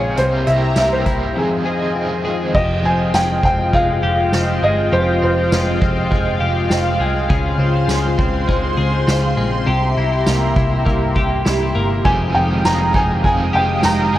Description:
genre	dream pop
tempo	101 BPM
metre	4/4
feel	straight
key	F minor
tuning	A4 = 439 Hz
part	felt-muted upright piano	melody	0.0-6.1, 12.0-14.2 s	Ab4 to Bb5	-19 LUFS	equal	ping-pong delay
part	overdriven semi-hollow guitar	accompaniment	0.0-2.6, 12.0-14.2 s	F2 to Ab4	-27 LUFS	right 3 dB	tremolo, lush chorus
part	lush unison pad	sustained chords	0.0-14.2 s	Ab3 to Eb6	-22 LUFS	equal	chorus, phaser
part	twelve-string electric guitar	arpeggios	0.0-14.2 s	F2 to Ab4	-21 LUFS	left 2 dB	lush chorus, ping-pong delay
part	vintage muted picked electric bass	bass	0.0-14.2 s	F1 to Db2	-20 LUFS	equal	none
part	soft-mallet drum kit	drums	0.2-14.2 s	crash cymbal, hi-hat, kick drum, ride cymbal, snare drum, tambourine	-22 LUFS	equal	none
room	light reverb, studio ambience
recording	worn, warbling old tape, cassette tape, warbly pitch drift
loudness	-14 LUFS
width	side -14 dB against mid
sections	0.0-2.5 A section; 2.5-14.2 B section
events	break 1.4-2.5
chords	0.2 C7; 1.4 Fm7; 2.5 Fm9; 7.3 Dbmaj7; 9.7 C7; 12.1 Fm9

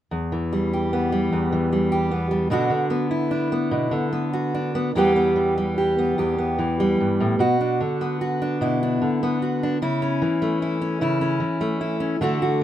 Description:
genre	folk, solo fingerstyle acoustic guitar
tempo	50 BPM (dotted quarters)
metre	6/8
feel	rubato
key	E dorian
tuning	A4 = 440 Hz
part	fingerpicked steel-string acoustic guitar	solo	0.1-12.6 s	E2 to G4	-20 LUFS	equal	none
room	moderate studio reverb, RT60 0.5 s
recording	minimal, uncompressed stereo recording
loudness	-20 LUFS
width	side -11 dB against mid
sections	0.1-5.0 A section; 5.0-12.6 B section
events	none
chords	0.1 Em; 2.5 Bm; 5.0 Em; 7.4 Bm; 9.8 A/C#

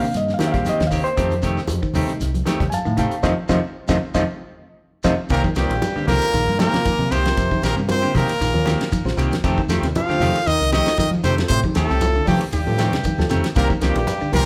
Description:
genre	afrobeat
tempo	116 BPM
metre	4/4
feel	swing 54% on 16ths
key	C dorian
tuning	A4 = 442 Hz
part	bright reed electric piano	accompaniment	0.0-14.5 s	Eb3 to A5	-28 LUFS	equal	none
part	semi-hollow electric guitar	arpeggios	0.0-14.4 s	C3 to G3	-30 LUFS	equal	none
part	clean electric guitar	stabs	0.0-14.5 s	Eb3 to G4	-29 LUFS	equal	none
part	shekere	percussion	0.0-14.5 s	none	-37 LUFS	equal	none
part	fingered electric bass	bass	0.1-14.4 s	Bb1 to F3	-26 LUFS	equal	none
part	damped 70s drum kit	drums	0.1-14.5 s	hi-hat, kick drum, ride cymbal, snare drum	-28 LUFS	equal	none
part	congas	percussion	0.4-14.5 s	none	-29 LUFS	equal	none
part	bright trumpet	melody	5.3-14.5 s	G4 to F5	-25 LUFS	equal	none
part	bright trombone section	second line	5.3-14.5 s	G2 to F3	-33 LUFS	equal	none
part	warm trombone	second line	5.3-14.5 s	G3 to F4	-33 LUFS	equal	none
room	light reverb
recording	band playing live in one room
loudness	-20 LUFS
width	mono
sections	0.0-5.3 A section; 5.3-14.5 B section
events	reed electric piano solo 0.0-5.3; band accent 3.2-5.3; drum fill 4.7-5.3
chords	0.0 Cm7; 1.2 F9; 5.3 Cm7; 9.4 F9; 13.6 Cm7

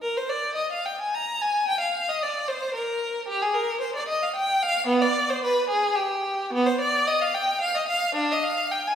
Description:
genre	classical, baroque-style suite movement for unaccompanied violin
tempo	111 BPM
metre	3/4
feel	rubato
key	unclear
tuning	A4 = 441 Hz
part	clear violin	solo	0.0-8.9 s	Cb4 to Bb5	-22 LUFS	equal	none
room	wet scoring stage reverb, RT60 1.6 s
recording	heard from further back in the room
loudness	-22 LUFS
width	side -8 dB against mid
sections	0.0-8.9 A section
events	none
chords	none

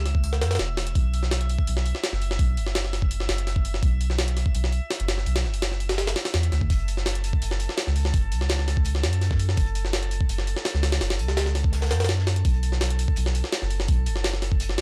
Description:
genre	drum and bass, jungle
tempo	167 BPM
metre	4/4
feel	straight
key	unclear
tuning	A4 = 445 Hz
part	soft dub sub bass	bass	0.0-14.8 s	E1 to F#2	-27 LUFS	equal	tube saturation
part	drifting glass-harmonics texture	texture	0.0-14.8 s	A4 to E6	-41 LUFS	equal	chorus, built-in reverb
part	jungle sampler-style drum kit	drums	0.1-14.8 s	hi-hat, kick drum, snare drum	-28 LUFS	equal	none
part	crunchy breakbeat drum kit	drums	6.7-14.8 s	hi-hat, snare drum	-43 LUFS	equal	none
room	small room ambience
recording	dry, gritty hardware recording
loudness	-24 LUFS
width	mono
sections	0.0-14.8 A section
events	none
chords	0.0 F#5; 1.0 B5; 6.7 F#m; 12.4 B5

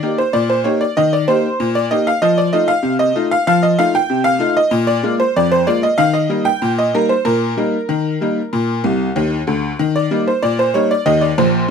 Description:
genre	ragtime piano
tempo	95 BPM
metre	2/4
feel	straight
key	Eb major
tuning	A4 = 438 Hz
part	tack piano	solo	0.0-11.7 s	Bb1 to G5	-14 LUFS	equal	none
room	light reverb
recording	close, detailed microphones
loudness	-14 LUFS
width	side -6 dB against mid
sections	0.0-11.7 A section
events	honky-tonk piano fill 8.8-9.8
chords	0.0 Eb; 2.2 F7; 4.7 Bb5; 6.0 Eb/Bb; 8.5 Bb; 9.8 Eb

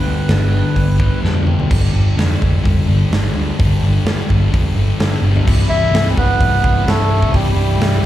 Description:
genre	quiet-loud alternative rock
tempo	128 BPM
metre	4/4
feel	straight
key	unclear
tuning	A4 = 441 Hz
part	melodica	melody	0.0-1.2, 5.7-8.1 s	G3 to E5	-20 LUFS	right 1 dB	slapback echo
part	clean electric guitar	arpeggios	0.0-1.7 s	G2 to G4	-25 LUFS	equal	spring reverb, slapback echo
part	thick fuzz guitar	riff	0.0-8.1 s	C2 to E4	-21 LUFS	left 6 dB	distortion, slapback echo
part	thick fuzz guitar	riff	0.0-8.1 s	C2 to E4	-26 LUFS	right 9 dB	distortion
part	picked electric bass	bass	0.0-8.0 s	C1 to G2	-16 LUFS	equal	none
part	big rock drum kit	drums	0.3-7.9 s	crash cymbal, hi-hat, kick drum, snare drum, toms	-18 LUFS	right 1 dB	none
room	studio reverb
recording	live gig heard through the venue's PA, club reverb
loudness	-12 LUFS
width	side -13 dB against mid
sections	0.0-1.7 A section; 1.7-5.5 B section; 5.5-8.1 C section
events	drum fill 1.2-1.7, 5.2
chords	0.0 G; 1.7 G5; 5.5 C

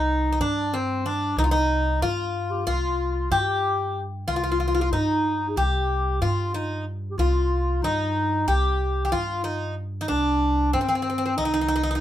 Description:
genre	turkish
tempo	186 BPM (eighths)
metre	9/8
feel	straight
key	C makam nihavent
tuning	A4 = 440 Hz
part	Greek bouzouki	melody	0.0-12.0 s	C4 to G4	-25 LUFS	left 1 dB	none
part	dark clarinet	second line	0.0-12.0 s	C4 to Ab4	-28 LUFS	left 1 dB	none
part	upright bass	bass	0.0-12.0 s	C2 to G2	-26 LUFS	right 1 dB	none
room	moderate studio reverb, RT60 0.6 s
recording	band playing live in one room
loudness	-22 LUFS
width	side -12 dB against mid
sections	0.0-12.0 A section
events	none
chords	none

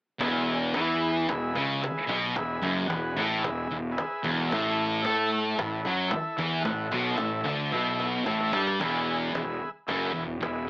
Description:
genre	garage rock duo or trio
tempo	112 BPM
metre	4/4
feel	straight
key	E major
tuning	A4 = 437 Hz
part	overdriven combo organ	sustained chords	0.2-10.7 s	E4 to F#5	-32 LUFS	equal	cassette tape
part	thick fuzz guitar	riff	0.2-10.6 s	E2 to A3	-27 LUFS	equal	distortion, cassette tape
part	fuzz fingered electric bass	bass	0.2-10.7 s	E1 to A2	-33 LUFS	equal	overdrive
part	cajon	drums	0.2-10.5 s	none	-34 LUFS	equal	cassette tape
room	moderate studio reverb, RT60 0.5 s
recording	home recording on cassette, AM radio sound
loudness	-25 LUFS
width	side -23 dB against mid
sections	0.2-8.8 A section; 8.8-10.7 B section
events	drum fill 7.7-8.8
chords	0.2 E; 4.5 A5; 8.8 E

